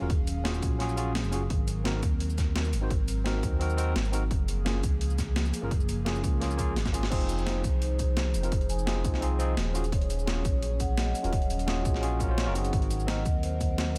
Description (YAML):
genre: liquid drum and bass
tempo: 171 BPM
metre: 4/4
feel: straight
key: Eb dorian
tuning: A4 = 440 Hz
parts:
  - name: overdriven tine electric piano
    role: accompaniment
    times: 0.0-13.2 s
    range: Bb3 to C5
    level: -38 LUFS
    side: equal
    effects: tape echo
  - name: airy breathy pad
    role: sustained chords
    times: 0.0-14.0 s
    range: F3 to F5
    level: -41 LUFS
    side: equal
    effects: chorus, sidechain pumping
  - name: smooth gliding synth bass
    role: bass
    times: 0.0-14.0 s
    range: Eb1 to Eb2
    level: -32 LUFS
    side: equal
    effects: none
  - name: breakbeat sampler-style drum kit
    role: drums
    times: 0.1-14.0 s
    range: crash cymbal, hi-hat, shaker, snare drum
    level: -37 LUFS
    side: equal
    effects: none
  - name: electronic kick drum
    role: drums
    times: 0.1-13.7 s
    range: none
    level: -32 LUFS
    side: equal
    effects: overdrive
  - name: vibraphone with soft mallets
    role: arpeggios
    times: 7.1-14.0 s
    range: C5 to Ab5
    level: -39 LUFS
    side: equal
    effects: delay
room: little or no reverb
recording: none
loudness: -28 LUFS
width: mono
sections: 0.0-7.1 A section; 7.1-14.0 A section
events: drop 0.0-7.1, 7.1-14.0; drum fill 6.8-7.1; band accent 7.0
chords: 0.0 Ebm11; 1.5 Ab9; 4.3 Gbmaj9; 7.1 Fm7; 9.7 Ebm11; 12.7 Ab9